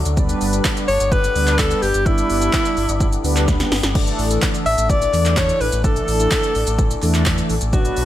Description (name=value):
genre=dance-pop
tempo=127 BPM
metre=4/4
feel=straight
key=unclear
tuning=A4 = 440 Hz
part: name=hammered dulcimer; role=arpeggios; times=0.0-8.1 s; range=D3 to D5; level=-28 LUFS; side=left 6 dB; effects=sidechain pumping, ping-pong delay
part: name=sub bass with octave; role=bass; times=0.0-8.1 s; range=G1 to E2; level=-21 LUFS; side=equal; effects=sidechain pumping
part: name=deep house drum kit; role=drums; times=0.1-8.1 s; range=crash cymbal, handclaps, hi-hat, kick drum, shaker, snare drum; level=-20 LUFS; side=equal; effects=none
part: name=mellow synth brass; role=accompaniment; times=0.2-8.1 s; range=E3 to B4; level=-23 LUFS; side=right 1 dB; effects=chorus, sidechain pumping
part: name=breathy alto saxophone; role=melody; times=0.9-8.1 s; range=E4 to E5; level=-20 LUFS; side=equal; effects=none
part: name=group handclap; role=percussion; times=4.4-7.4 s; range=none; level=-37 LUFS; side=right 6 dB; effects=none
room=little or no reverb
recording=none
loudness=-15 LUFS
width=side -13 dB against mid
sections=0.0-8.1 A section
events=drum fill 3.5-4.0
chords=0.2 G; 4.0 Asus4